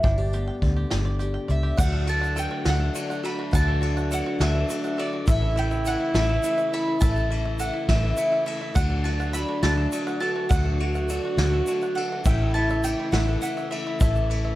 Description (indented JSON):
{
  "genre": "indie folk with a building arrangement",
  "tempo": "69 BPM (dotted quarters)",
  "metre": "6/8",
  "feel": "straight",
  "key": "D major",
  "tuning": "A4 = 437 Hz",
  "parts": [
    { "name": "mandolin", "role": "melody", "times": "0.0-14.6 s", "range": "D4 to B5", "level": "-30 LUFS", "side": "right 1 dB", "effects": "none" },
    { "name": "fingerpicked steel-string acoustic guitar", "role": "accompaniment", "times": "0.0-3.5 s", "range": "G2 to G4", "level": "-34 LUFS", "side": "left 2 dB", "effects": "none" },
    { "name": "bluegrass banjo", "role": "arpeggios", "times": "0.0-14.6 s", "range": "E4 to G5", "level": "-36 LUFS", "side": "right 2 dB", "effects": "none" },
    { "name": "vintage muted fingered electric bass", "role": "bass", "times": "0.0-14.6 s", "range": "G1 to D2", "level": "-24 LUFS", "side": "equal", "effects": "none" },
    { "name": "vintage brush drum kit", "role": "drums", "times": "0.0-14.4 s", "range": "crash cymbal, hi-hat, kick drum, ride cymbal, snare drum", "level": "-27 LUFS", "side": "equal", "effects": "none" },
    { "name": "warm French horn", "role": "second line", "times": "1.8-14.3 s", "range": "D4 to F#4", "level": "-30 LUFS", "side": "right 1 dB", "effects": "none" },
    { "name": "picked twelve-string acoustic guitar", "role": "accompaniment", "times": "1.8-14.6 s", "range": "A2 to F#4", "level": "-32 LUFS", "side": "left 4 dB", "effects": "none" },
    { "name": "mellow tonewheel organ", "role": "sustained chords", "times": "1.8-14.6 s", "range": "C#3 to F#4", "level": "-35 LUFS", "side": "right 1 dB", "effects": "slow rotary speaker, chorus vibrato" },
    { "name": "egg shaker", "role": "percussion", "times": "1.8-14.2 s", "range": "none", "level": "-41 LUFS", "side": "right 5 dB", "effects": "none" }
  ],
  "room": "light reverb, small room ambience",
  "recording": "dark, warm production",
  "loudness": "-21 LUFS",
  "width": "side -16 dB against mid",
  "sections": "0.0-1.8 A section; 1.8-14.6 B section",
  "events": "none",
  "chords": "0.0 G; 1.8 D; 5.3 A; 8.8 D; 12.3 A"
}